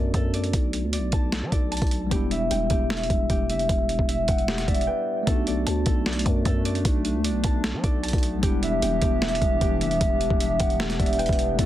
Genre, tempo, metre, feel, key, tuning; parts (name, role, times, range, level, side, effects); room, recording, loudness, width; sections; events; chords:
hip hop, trap; 152 BPM; 4/4; half-time; B minor; A4 = 440 Hz
tine electric piano; accompaniment; 0.0-11.7 s; G3 to F#5; -30 LUFS; left 1 dB; fast stereo tremolo
Celtic harp; arpeggios; 0.0-11.7 s; G4 to A5; -28 LUFS; equal; tape echo
growling 808-style bass; bass; 0.0-11.7 s; E1 to F#3; -28 LUFS; equal
boom bap sampler-style drum kit; drums; 0.1-11.7 s; hi-hat, kick drum, snare drum; -24 LUFS; equal
hollow soft pad; sustained chords; 5.3-11.7 s; E3 to G4; -31 LUFS; equal; chorus
little or no reverb; dense, heavily limited modern master; -21 LUFS; side -13 dB against mid
0.0-5.3 A section; 5.3-11.7 B section
drums muted 4.9-5.3
0.0 Bm7; 2.1 Em7; 5.3 Bm7; 8.4 Em7